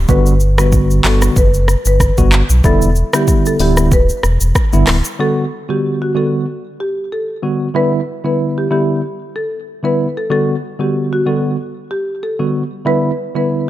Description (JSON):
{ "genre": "afrobeats", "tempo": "94 BPM", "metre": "4/4", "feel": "swing 55% on 16ths", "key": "G major", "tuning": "A4 = 440 Hz", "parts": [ { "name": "sub bass with octave", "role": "bass", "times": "0.0-5.0 s", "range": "D1 to B1", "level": "-13 LUFS", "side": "equal", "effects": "none" }, { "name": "marimba with medium mallets", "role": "melody", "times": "0.1-13.5 s", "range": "F#4 to B4", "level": "-20 LUFS", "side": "left 1 dB", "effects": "digital delay" }, { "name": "tine electric piano", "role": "accompaniment", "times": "0.1-13.7 s", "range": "D3 to F#4", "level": "-17 LUFS", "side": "right 1 dB", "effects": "medium stereo tremolo" }, { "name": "afro-pop drum kit", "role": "drums", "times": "0.1-5.2 s", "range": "handclaps, hi-hat, kick drum, rim click, shaker", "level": "-15 LUFS", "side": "equal", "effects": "none" } ], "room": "light reverb, digital ambience", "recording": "none", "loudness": "-13 LUFS", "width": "side -14 dB against mid", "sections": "0.0-5.2 A section; 5.2-13.7 B section", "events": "none", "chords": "0.1 Gmaj7; 2.6 Em7; 5.2 Gmaj7; 7.7 Em7; 10.3 Gmaj7; 12.9 Em7" }